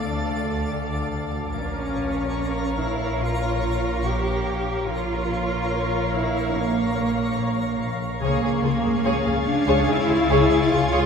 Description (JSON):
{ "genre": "cinematic, suspense film score", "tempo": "72 BPM", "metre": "4/4", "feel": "straight", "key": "unclear", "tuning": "A4 = 440 Hz", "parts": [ { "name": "muted studio violin section", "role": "melody", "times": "0.0-11.1 s", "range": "F5", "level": "-32 LUFS", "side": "left 3 dB", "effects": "none" }, { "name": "muted studio violin section", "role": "second line", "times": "0.0-11.1 s", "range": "E#4 to D5", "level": "-31 LUFS", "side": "left 2 dB", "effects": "none" }, { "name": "muted studio viola section", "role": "accompaniment", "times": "0.0-11.1 s", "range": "G#4 to Bb4", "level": "-30 LUFS", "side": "left 1 dB", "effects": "none" }, { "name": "twinkling granular texture", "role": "sustained chords", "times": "0.0-11.1 s", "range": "G#4 to Bb5", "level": "-31 LUFS", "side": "left 1 dB", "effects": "built-in reverb" }, { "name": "concert harp", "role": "riff", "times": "0.0-11.1 s", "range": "Bb2 to D4", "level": "-31 LUFS", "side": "left 6 dB", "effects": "none" }, { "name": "muted studio cello section", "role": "bass", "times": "0.0-11.1 s", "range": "A3 to G4", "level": "-25 LUFS", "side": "right 2 dB", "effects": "none" }, { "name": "muted studio double bass section", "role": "bass", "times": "0.0-11.0 s", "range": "Bb1 to D2", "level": "-29 LUFS", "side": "right 1 dB", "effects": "none" }, { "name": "swarming drone", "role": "drone", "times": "0.0-11.1 s", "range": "Bb1 to D2", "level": "-32 LUFS", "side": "right 1 dB", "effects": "built-in reverb" }, { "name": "muted studio violin section", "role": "texture", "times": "8.2-11.1 s", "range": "G#6 to A6", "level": "-34 LUFS", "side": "left 3 dB", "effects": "none" } ], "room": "wet scoring stage reverb, RT60 1.6 s", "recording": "heard from further back in the room", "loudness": "-21 LUFS", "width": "side -6 dB against mid", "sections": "0.0-11.1 A section", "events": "none", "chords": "0.0 Dm; 1.5 Bbm; 8.2 C#", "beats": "0.71 | 1.55 2.38 3.21 4.05 | 4.88 5.71 6.55 7.38 | 8.21 9.05 9.88 10.71" }